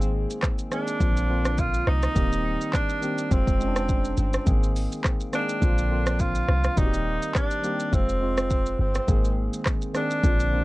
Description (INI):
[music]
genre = afrobeats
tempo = 104 BPM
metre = 4/4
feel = swing 55% on 16ths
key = unclear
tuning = A4 = 440 Hz
[part]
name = warm tenor saxophone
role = melody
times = 0.0-10.6 s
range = C4 to F4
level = -29 LUFS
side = right 1 dB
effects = tape echo
[part]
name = soft electric-piano-like synth keys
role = accompaniment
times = 0.0-10.6 s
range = Db3 to Ab4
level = -30 LUFS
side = equal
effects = chorus
[part]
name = warm 808-style bass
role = bass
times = 0.0-10.6 s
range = Eb1 to C2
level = -25 LUFS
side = equal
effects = none
[part]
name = afro-pop drum kit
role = drums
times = 0.0-10.5 s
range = handclaps, hi-hat, kick drum, rim click, shaker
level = -25 LUFS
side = equal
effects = none
[sound]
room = little or no reverb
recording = dry, gritty hardware recording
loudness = -22 LUFS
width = side -19 dB against mid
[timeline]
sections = 0.0-10.6 A section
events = none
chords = 0.0 Abadd9; 1.0 Bbadd9; 2.2 Eb6; 3.3 Fm; 4.5 Abadd9; 5.6 Bbadd9; 6.8 Eb6; 7.9 Fm; 9.1 Abadd9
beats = 0.43 | 1.01 1.58 2.16 2.74 | 3.31 3.89 4.47 5.04 | 5.62 6.20 6.78 7.35 | 7.93 8.51 9.08 9.66 | 10.24